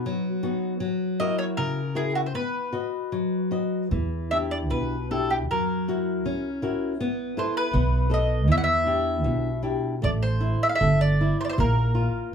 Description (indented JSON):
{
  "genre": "fado-style ballad",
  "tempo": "76-81 BPM",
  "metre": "2/4",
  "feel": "rubato",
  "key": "E minor",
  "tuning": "A4 = 439 Hz",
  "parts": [
    { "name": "mandolin", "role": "melody", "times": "0.0-12.3 s", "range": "F#4 to F#5", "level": "-27 LUFS", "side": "equal", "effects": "none" },
    { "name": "flamenco guitar", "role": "accompaniment", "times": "0.0-12.3 s", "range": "B2 to D#5", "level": "-27 LUFS", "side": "left 2 dB", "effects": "none" },
    { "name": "upright bass", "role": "bass", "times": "3.9-12.1 s", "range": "G1 to F#2", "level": "-24 LUFS", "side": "right 1 dB", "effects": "none" }
  ],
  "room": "wet small room reverb, RT60 0.5 s",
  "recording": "heard from further back in the room",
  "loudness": "-22 LUFS",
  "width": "side -7 dB against mid",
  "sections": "0.0-10.0 A section; 10.0-12.3 B section",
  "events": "none",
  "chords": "0.0 B; 0.8 F#7; 2.3 B; 3.9 Em7; 5.5 F#7; 7.0 B7sus4; 7.7 B7; 8.5 Em7; 10.0 A5; 11.6 Bb5",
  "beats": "0.06 | 0.80 1.56 | 2.33 3.12 | 3.91 4.70 | 5.49 6.26 | 7.00 7.75 | 8.49 9.26 | 10.03 10.81 | 11.58 12.33"
}